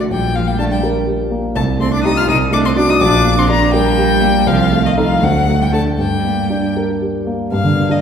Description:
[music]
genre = quick classical-period movement for piano trio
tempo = 81 BPM (dotted quarters)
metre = 6/8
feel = uneven beats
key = G minor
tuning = A4 = 440 Hz
[part]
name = clear violin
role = melody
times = 0.0-8.0 s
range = D5 to F6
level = -18 LUFS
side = left 5 dB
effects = none
[part]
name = rich cello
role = second line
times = 0.0-8.0 s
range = D3 to F4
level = -20 LUFS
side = right 4 dB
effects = none
[part]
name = dark concert grand piano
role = accompaniment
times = 0.0-8.0 s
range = Bb1 to Bb4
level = -15 LUFS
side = equal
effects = none
[sound]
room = wet concert hall reverb, RT60 1.9 s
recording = heard from further back in the room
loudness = -12 LUFS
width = side -7 dB against mid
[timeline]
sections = 0.0-7.5 A section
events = none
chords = 0.1 Gm/Bb; 1.6 Am7b5/C; 2.3 D7/C; 3.0 Gm/Bb; 4.5 Adim/C; 5.2 D; 6.0 Gm

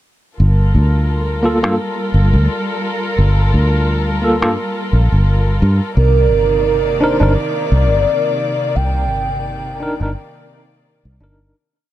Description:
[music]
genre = trip hop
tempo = 86 BPM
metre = 4/4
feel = swing 56% on 16ths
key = G minor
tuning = A4 = 440 Hz
[part]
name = dark studio string section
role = sustained chords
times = 0.4-11.5 s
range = C3 to D5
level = -21 LUFS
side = left 1 dB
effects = none
[part]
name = fingered electric bass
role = bass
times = 0.4-11.5 s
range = G1 to G2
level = -14 LUFS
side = equal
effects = none
[part]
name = barky tine electric piano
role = accompaniment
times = 1.4-11.6 s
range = Bb3 to Bb4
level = -18 LUFS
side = equal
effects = tremolo, tape echo
[part]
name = pure breathy sine lead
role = melody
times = 6.0-10.2 s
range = Bb4 to G5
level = -17 LUFS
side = right 3 dB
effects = chorus, phaser, cassette tape, tape echo
[sound]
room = light reverb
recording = dark, warm production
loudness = -13 LUFS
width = side -14 dB against mid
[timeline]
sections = 0.4-11.6 groove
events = fade-out 7.8-11.6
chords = 0.4 Gm9; 6.0 Cm9

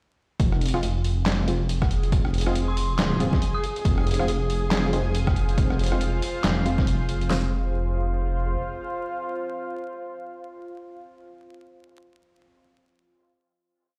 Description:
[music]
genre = deep dubstep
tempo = 139 BPM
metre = 4/4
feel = swing 58% on 16ths, half-time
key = F minor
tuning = A4 = 441 Hz
[part]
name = dark detuned saw bass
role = bass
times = 0.4-8.6 s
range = F1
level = -27 LUFS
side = equal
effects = none
[part]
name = deep house drum kit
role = drums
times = 0.4-7.4 s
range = handclaps, kick drum, snare drum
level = -26 LUFS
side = equal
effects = overdrive
[part]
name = trip hop sampler-style drum kit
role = drums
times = 0.4-7.3 s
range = handclaps, hi-hat, rim click, snare drum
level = -32 LUFS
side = equal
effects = none
[part]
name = backwards swelling texture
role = texture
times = 1.9-7.3 s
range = Ab4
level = -37 LUFS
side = equal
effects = built-in reverb
[part]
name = filtered dub chord stab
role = stabs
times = 0.7-12.0 s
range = Ab3 to F4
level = -35 LUFS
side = equal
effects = chorus, dub echo
[part]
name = dark detuned synth bell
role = melody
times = 2.7-4.1 s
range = C6 to Eb6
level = -38 LUFS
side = equal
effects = chorus, phaser, dub echo
[part]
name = deep dark ambient pad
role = sustained chords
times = 5.1-11.5 s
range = F4 to F5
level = -36 LUFS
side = equal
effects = chorus, built-in reverb
[sound]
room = light reverb, digital ambience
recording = played on a big sound system in a bare room, stone room reverb, vinyl crackle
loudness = -24 LUFS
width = mono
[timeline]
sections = 0.4-7.3 drop; 7.3-10.8 final chord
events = drop 0.4-7.3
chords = 0.4 Fm

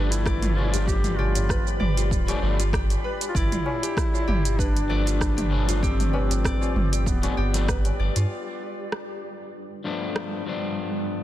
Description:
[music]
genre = organic downtempo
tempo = 97 BPM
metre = 4/4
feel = swing 54% on 16ths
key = G mixolydian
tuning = A4 = 444 Hz
[part]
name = warm duduk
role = melody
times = 0.0-8.0 s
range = B3 to G4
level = -31 LUFS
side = equal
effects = ping-pong delay
[part]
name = electric guitar at the edge of break-up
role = accompaniment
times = 0.0-11.2 s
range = G2 to B4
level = -31 LUFS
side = left 5 dB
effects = sidechain pumping, ping-pong delay
[part]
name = granular cloud pad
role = sustained chords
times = 0.0-11.2 s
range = G3 to D6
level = -34 LUFS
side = right 1 dB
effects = built-in reverb, sidechain pumping
[part]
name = concert harp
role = arpeggios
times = 0.0-10.7 s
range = F4 to D5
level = -33 LUFS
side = left 4 dB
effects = ping-pong delay
[part]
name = warm sub bass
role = bass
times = 0.0-8.2 s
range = D1 to G2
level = -24 LUFS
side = equal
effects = sidechain pumping
[part]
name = deep house drum kit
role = drums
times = 0.1-10.3 s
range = hi-hat, rim click, shaker, toms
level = -30 LUFS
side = right 2 dB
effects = overdrive
[part]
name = electronic kick drum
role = drums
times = 0.3-7.8 s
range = none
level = -27 LUFS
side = equal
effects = overdrive
[part]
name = tabla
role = percussion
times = 0.6-8.3 s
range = none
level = -36 LUFS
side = left 3 dB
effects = none
[sound]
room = little or no reverb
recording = dense, heavily limited modern master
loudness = -22 LUFS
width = side -13 dB against mid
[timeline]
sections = 0.0-8.3 A section; 8.3-11.2 B section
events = filter sweep on ambient pad 8.3-11.2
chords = 0.0 G7

